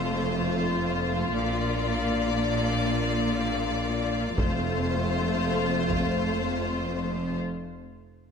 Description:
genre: cinematic, epic orchestral film score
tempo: free time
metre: none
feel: none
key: F major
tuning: A4 = 437 Hz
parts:
  - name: bright symphonic violin section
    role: melody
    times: 0.0-7.4 s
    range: C5 to D5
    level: -32 LUFS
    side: left 7 dB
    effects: none
  - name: rich symphonic violin section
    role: second line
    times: 0.0-7.4 s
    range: F4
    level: -32 LUFS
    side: left 3 dB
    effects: none
  - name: rich symphonic viola section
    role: accompaniment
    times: 0.0-7.4 s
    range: A3 to Bb3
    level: -34 LUFS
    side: right 2 dB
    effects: none
  - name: dark French horn section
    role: sustained chords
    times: 0.0-7.4 s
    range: A3 to D4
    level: -33 LUFS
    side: left 5 dB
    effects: none
  - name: rich symphonic double bass section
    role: bass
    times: 0.0-7.4 s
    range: F1 to Bb1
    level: -34 LUFS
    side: right 4 dB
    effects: none
  - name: warm studio cello section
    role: bass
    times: 0.0-7.4 s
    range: F2 to Bb2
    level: -30 LUFS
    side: right 2 dB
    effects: none
  - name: taiko ensemble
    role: drums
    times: 4.4-6.6 s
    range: none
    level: -29 LUFS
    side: equal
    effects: none
room: moderate concert hall reverb, RT60 1.8 s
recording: none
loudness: -24 LUFS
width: side -6 dB against mid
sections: 0.0-8.3 A section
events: build-up 0.0-8.3; break 7.4-8.3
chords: 0.0 F; 1.4 Bb; 4.4 F; 7.4 N.C.

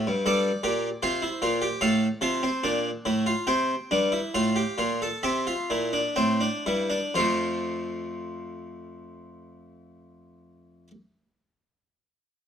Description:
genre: classical, baroque-style 3-part fugue for harpsichord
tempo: 60-78 BPM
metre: 4/4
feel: straight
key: F major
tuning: A4 = 439 Hz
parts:
  - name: harpsichord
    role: solo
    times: 0.0-10.9 s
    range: F2 to A5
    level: -24 LUFS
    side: equal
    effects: none
room: moderate stone room reverb, RT60 1.1 s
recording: close, detailed microphones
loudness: -24 LUFS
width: side -8 dB against mid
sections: 0.0-7.1 A section; 7.1-11.1 B section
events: slowing down 0.0-7.1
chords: 0.3 C7/G; 1.8 F/A; 3.5 C7; 7.1 F

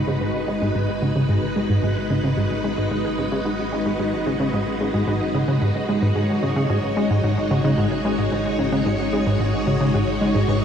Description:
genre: ambient, sequencer-driven space music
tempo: 111 BPM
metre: 4/4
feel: straight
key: G# minor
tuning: A4 = 440 Hz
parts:
  - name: string machine, full ensemble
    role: sustained chords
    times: 0.0-10.6 s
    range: G#3 to C#5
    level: -23 LUFS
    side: left 1 dB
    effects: ensemble chorus
  - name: wide unison pluck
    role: arpeggios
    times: 0.0-10.6 s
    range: F#4 to B5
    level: -36 LUFS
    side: right 1 dB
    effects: none
  - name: plucky analog bass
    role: riff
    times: 0.0-10.6 s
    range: G#2 to G#3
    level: -21 LUFS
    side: equal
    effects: wide subtle chorus, tape echo
  - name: warm sub bass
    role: bass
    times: 0.0-10.6 s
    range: G#1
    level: -38 LUFS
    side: equal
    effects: none
  - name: bubbling stepped-filter texture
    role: texture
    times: 0.0-10.6 s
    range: D#5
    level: -32 LUFS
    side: right 2 dB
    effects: chorus, built-in reverb
room: wet concert hall reverb, RT60 2.4 s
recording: dark, warm production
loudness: -19 LUFS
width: side -8 dB against mid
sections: 0.0-10.6 A section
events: fade-in on sub bass 0.0-10.6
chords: 0.0 G#m7

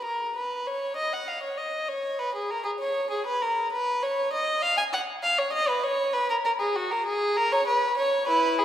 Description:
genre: classical, baroque-style suite movement for unaccompanied violin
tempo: 66 BPM (dotted quarters)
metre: 6/8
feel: rubato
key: unclear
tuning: A4 = 437 Hz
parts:
  - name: warm violin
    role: solo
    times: 0.0-8.6 s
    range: E4 to G#5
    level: -24 LUFS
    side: equal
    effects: none
room: wet concert hall reverb, RT60 2.1 s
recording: recorded in a church or concert hall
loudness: -24 LUFS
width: side -11 dB against mid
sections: 0.0-8.6 A section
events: none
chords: none

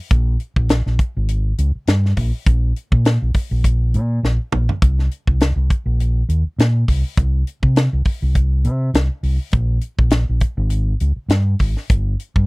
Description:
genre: electric jazz fusion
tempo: 102 BPM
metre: 4/4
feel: swing 54% on 16ths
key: unclear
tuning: A4 = 441 Hz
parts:
  - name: fingered electric bass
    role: bass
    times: 0.1-12.5 s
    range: G1 to C3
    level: -16 LUFS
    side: equal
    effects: none
  - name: tight funk drum kit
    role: drums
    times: 0.1-12.5 s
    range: hi-hat, kick drum, snare drum, toms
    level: -17 LUFS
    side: equal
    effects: none
room: little or no reverb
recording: dry, close 1970s-style studio recording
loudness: -16 LUFS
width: side -25 dB against mid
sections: 0.0-12.5 A section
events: drum fill 4.2-4.8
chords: none

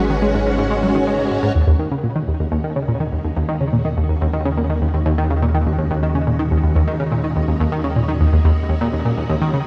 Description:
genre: ambient, sequencer-driven space music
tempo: 124 BPM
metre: 4/4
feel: straight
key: Eb minor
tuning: A4 = 442 Hz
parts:
  - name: string machine, full ensemble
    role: sustained chords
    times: 0.0-9.7 s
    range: Ab3 to Cb5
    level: -27 LUFS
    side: equal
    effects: ensemble chorus
  - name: fat analog bass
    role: bass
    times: 0.0-9.7 s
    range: Ab1 to Eb2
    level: -25 LUFS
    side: equal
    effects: none
  - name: tight sequenced synth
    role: riff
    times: 0.1-9.6 s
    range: Eb2 to Ab3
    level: -20 LUFS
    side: equal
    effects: chorus, tape echo
  - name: wind-like tuned noise texture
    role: texture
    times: 2.1-9.7 s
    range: Eb5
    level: -40 LUFS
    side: equal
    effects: built-in reverb
room: moderate concert hall reverb, RT60 2.0 s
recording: none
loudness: -19 LUFS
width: mono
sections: 0.0-1.6 A section; 1.6-9.7 B section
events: fade-in on string machine 1.6-9.7; fade-in on synth texture 1.6-9.7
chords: 0.0 Abm; 1.6 Ebm

